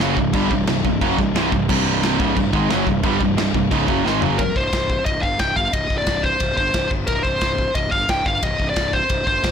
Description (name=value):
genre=heavy metal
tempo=178 BPM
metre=4/4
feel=straight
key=C minor from 4.4 s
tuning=A4 = 441 Hz
part: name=distorted electric guitar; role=riff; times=0.0-4.4 s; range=C2 to Ab3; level=-25 LUFS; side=left 12 dB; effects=distortion
part: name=thick fuzz guitar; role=riff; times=0.0-4.4 s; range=C2 to Ab3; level=-23 LUFS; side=left 1 dB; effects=distortion
part: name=tight distorted guitar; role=riff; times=0.0-4.4 s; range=C2 to Ab3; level=-22 LUFS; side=right 14 dB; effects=distortion
part: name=fuzz picked electric bass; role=bass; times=0.0-9.5 s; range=C1 to Ab1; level=-25 LUFS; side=equal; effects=overdrive
part: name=modern studio drum kit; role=drums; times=0.0-9.5 s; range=china cymbal, crash cymbal, kick drum, ride cymbal, snare drum, toms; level=-23 LUFS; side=left 1 dB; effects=none
part: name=high-gain lead guitar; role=melody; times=4.4-9.5 s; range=Bb4 to G5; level=-20 LUFS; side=left 1 dB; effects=distortion, ping-pong delay
room=light reverb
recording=blown-out, overdriven recording, overdrive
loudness=-17 LUFS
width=side -7 dB against mid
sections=0.0-4.4 A section; 4.4-9.5 B section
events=drum fill 4.1-4.4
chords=0.0 Cm; 4.4 C5; 6.9 N.C.; 7.1 C5